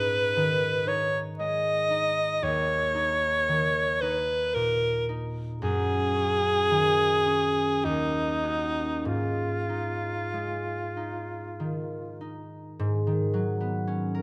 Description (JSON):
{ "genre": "classical, impressionist duo for alto saxophone and harp", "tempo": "46-60 BPM", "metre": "3/4", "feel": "rubato", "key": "G# dorian", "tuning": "A4 = 440 Hz", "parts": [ { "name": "bright alto saxophone", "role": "melody", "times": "0.0-12.2 s", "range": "D#4 to D#5", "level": "-28 LUFS", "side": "equal", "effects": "none" }, { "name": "concert harp", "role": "accompaniment", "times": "0.0-14.2 s", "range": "D#2 to A#4", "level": "-32 LUFS", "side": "equal", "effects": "none" } ], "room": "moderate recital hall reverb, RT60 1.5 s", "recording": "none", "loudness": "-27 LUFS", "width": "mono", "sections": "0.0-12.8 A section; 12.8-14.2 B section", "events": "none", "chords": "0.0 G#m; 2.4 D#5; 5.6 F#sus2; 7.9 D#m7; 9.1 G#5; 12.8 G#m11", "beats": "0.36 1.39 | 2.43 3.49 4.56 | 5.62 6.70 7.85 | 9.06 10.35 11.60 | 12.80 13.89" }